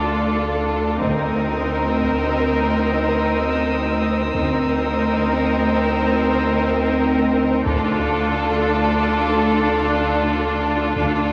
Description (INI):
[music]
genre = cinematic, suspense film score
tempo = free time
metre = none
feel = none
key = unclear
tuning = A4 = 440 Hz
[part]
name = rich chamber violin section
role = melody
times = 0.0-11.3 s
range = A4 to Bb4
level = -27 LUFS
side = equal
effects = none
[part]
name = clear chamber violin section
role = second line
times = 0.0-11.3 s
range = Eb4 to F4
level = -29 LUFS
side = equal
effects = none
[part]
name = rich symphonic viola section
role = accompaniment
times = 0.0-11.3 s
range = C4 to D4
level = -25 LUFS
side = equal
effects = none
[part]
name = pulsing gated texture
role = sustained chords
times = 0.0-11.3 s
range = Eb4 to F5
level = -29 LUFS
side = equal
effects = chorus, built-in reverb
[part]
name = rich symphonic cello section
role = bass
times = 0.0-11.3 s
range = D2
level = -28 LUFS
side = equal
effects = none
[part]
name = punchy sub bass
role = drone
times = 0.0-11.3 s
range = D2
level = -28 LUFS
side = equal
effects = none
[part]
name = clear symphonic double bass section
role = bass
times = 1.0-11.3 s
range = D2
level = -34 LUFS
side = equal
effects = none
[part]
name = taiko ensemble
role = drums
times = 1.0-2.3, 7.7-9.0 s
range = none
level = -34 LUFS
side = equal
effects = none
[part]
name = rich studio violin section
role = texture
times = 1.0-7.3 s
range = Eb6 to E6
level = -34 LUFS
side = equal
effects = none
[sound]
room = wet scoring stage reverb, RT60 1.5 s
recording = vinyl crackle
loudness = -19 LUFS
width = mono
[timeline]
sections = 0.0-11.3 A section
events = none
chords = 0.0 Dm; 1.0 Cm7/D; 7.7 Dm